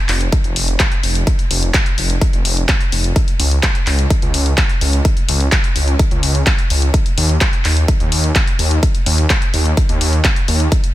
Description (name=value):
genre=EDM, festival progressive house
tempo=127 BPM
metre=4/4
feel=straight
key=unclear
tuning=A4 = 440 Hz
part: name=wide detuned saw bass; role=bass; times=0.1-10.7 s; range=F1 to Eb2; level=-16 LUFS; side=equal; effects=chorus, sidechain pumping
part: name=big-room dance drum kit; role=drums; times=0.1-10.9 s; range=handclaps, hi-hat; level=-19 LUFS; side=left 1 dB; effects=studio reverb
part: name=electronic kick drum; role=drums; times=0.3-10.8 s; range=none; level=-15 LUFS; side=equal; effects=overdrive, studio reverb
room=digital ambience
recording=dense, heavily limited modern master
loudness=-13 LUFS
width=side -15 dB against mid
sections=0.0-10.9 A section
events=none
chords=none